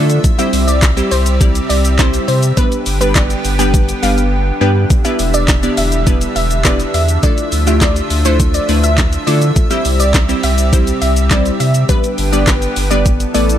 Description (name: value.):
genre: dance-pop.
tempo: 103 BPM.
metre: 4/4.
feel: straight.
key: unclear.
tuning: A4 = 440 Hz.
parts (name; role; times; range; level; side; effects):
glassy wavetable pluck; melody; 0.0-13.5 s; B4 to G5; -20 LUFS; equal; chorus, sidechain pumping.
glassy wavetable pluck; accompaniment; 0.0-13.6 s; G3 to D5; -18 LUFS; equal; chorus, sidechain pumping.
lush unison pad; sustained chords; 0.0-13.6 s; C3 to E5; -22 LUFS; right 1 dB; chorus, sidechain pumping.
saturated sub bass; bass; 0.0-13.6 s; E1 to D3; -15 LUFS; equal; sidechain pumping.
smooth R&B drum kit; drums; 0.1-13.6 s; handclaps, hi-hat, kick drum, shaker, snare drum; -15 LUFS; equal; none.
room: digital ambience.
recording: none.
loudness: -11 LUFS.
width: side -10 dB against mid.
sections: 0.0-13.6 A section.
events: silent gap 4.3-4.9.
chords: 0.2 C; 2.6 G; 4.9 Em7; 7.2 Dmadd9; 9.6 C; 11.9 G; 13.1 Asus2.